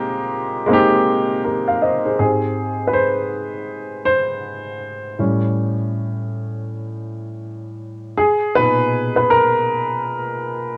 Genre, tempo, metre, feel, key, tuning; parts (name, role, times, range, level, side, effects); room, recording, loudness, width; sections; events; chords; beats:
hip hop; 80 BPM; 4/4; swing 63% on 16ths; A4 = 442 Hz
dark upright piano; solo; 0.0-10.8 s; Ab2 to F5; -20 LUFS; equal; cassette tape, low-pass filter
moderate studio reverb, RT60 0.6 s; cassette tape; -19 LUFS; mono
0.0-2.2 A section; 2.2-10.8 B section
upright piano solo 2.2-10.8
0.0 Abmaj9; 2.2 Abmaj7; 5.2 A7; 8.2 Bmaj7
0.69 1.44 | 2.19 2.94 3.69 4.44 | 5.19 5.94 6.69 7.44 | 8.19 8.94 9.69 10.44